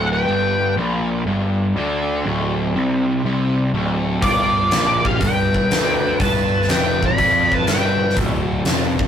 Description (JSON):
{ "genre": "blues rock power trio and southern rock", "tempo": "122 BPM", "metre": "4/4", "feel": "swing 68% on 8ths", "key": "unclear", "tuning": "A4 = 437 Hz", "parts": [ { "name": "octave-fuzz lead guitar", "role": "melody", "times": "0.0-0.7, 4.2-8.1 s", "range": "D5 to B5", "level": "-19 LUFS", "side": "left 1 dB", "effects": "distortion" }, { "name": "biting lead guitar", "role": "second line", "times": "0.0-0.7, 4.2-8.1 s", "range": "F4 to D5", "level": "-24 LUFS", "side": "left 1 dB", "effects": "overdrive" }, { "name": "overdriven electric guitar", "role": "riff", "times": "0.0-9.1 s", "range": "D2 to F3", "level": "-22 LUFS", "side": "left 1 dB", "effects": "none" }, { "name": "fuzz picked electric bass", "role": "bass", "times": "0.0-9.1 s", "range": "D1 to F2", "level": "-22 LUFS", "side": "equal", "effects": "overdrive" }, { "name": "huge arena drum kit", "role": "drums", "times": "4.2-9.1 s", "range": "hi-hat, kick drum, snare drum", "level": "-21 LUFS", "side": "equal", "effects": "none" } ], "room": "moderate studio ambience, RT60 0.5 s", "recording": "rough rehearsal-room recording, warm saturation", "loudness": "-16 LUFS", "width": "side -9 dB against mid", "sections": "0.0-9.1 A section", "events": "none", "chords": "0.3 G; 2.2 Csus2/D; 4.2 G7; 8.2 D5" }